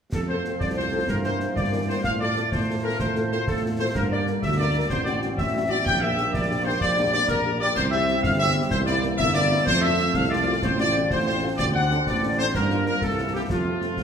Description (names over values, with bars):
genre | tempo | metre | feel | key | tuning
military-style march for wind band | 126 BPM (dotted quarters) | 6/8 | straight | F major | A4 = 443 Hz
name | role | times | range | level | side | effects
clear trumpet section | melody | 0.1-14.0 s | F4 to G5 | -26 LUFS | left 1 dB | none
warm woodwind section | second line | 0.1-14.0 s | F4 to G5 | -28 LUFS | left 2 dB | none
clear trombone section | sustained chords | 0.1-14.0 s | D3 to C4 | -34 LUFS | right 1 dB | none
mellow tuba | bass | 0.1-14.0 s | G1 to A2 | -26 LUFS | right 2 dB | none
concert snare drum, clash cymbals and concert bass drum | drums | 0.1-14.0 s | none | -31 LUFS | equal | none
mellow French horn section | accompaniment | 0.3-13.9 s | G3 to Bb4 | -32 LUFS | left 3 dB | none
room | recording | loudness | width
wet recital hall reverb, RT60 1.5 s | recorded in a church or concert hall | -21 LUFS | side -7 dB against mid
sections
0.1-14.0 A section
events
none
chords
0.1 F; 1.1 C7/G; 2.0 F/A; 3.9 Gm; 4.9 D7/A; 5.9 Gm/Bb; 7.8 C; 8.7 C7; 9.7 F; 10.6 F/A; 11.6 D7; 12.5 Gm7; 13.0 C7; 13.5 F